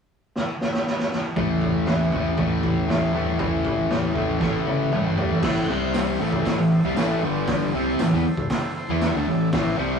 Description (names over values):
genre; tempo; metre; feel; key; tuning
garage rock duo or trio; 118 BPM; 4/4; straight; A minor; A4 = 439 Hz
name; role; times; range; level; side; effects
raw garage drum kit; drums; 0.4-9.6 s; crash cymbal, hi-hat, kick drum, snare drum, toms; -25 LUFS; equal; none
fuzz guitar; riff; 1.4-10.0 s; G2 to E4; -22 LUFS; equal; distortion
fuzz fingered electric bass; bass; 1.4-10.0 s; G1 to G2; -30 LUFS; equal; overdrive
overdriven combo organ; sustained chords; 5.4-10.0 s; C4 to C6; -33 LUFS; right 1 dB; spring reverb
tambourine; percussion; 5.9-9.1 s; none; -45 LUFS; right 6 dB; none
room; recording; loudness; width
moderate studio reverb, RT60 0.6 s; rough rehearsal-room recording, small room ambience; -20 LUFS; side -6 dB against mid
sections
0.0-1.4 A section; 1.4-5.4 B section; 5.4-10.0 C section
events
drum fill 0.3-1.4, 4.4-5.4; transistor combo organ fill 8.5-9.5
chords
0.0 N.C.; 1.4 A5; 5.4 Am; 5.7 C5; 6.2 Am; 7.2 G5; 7.7 Am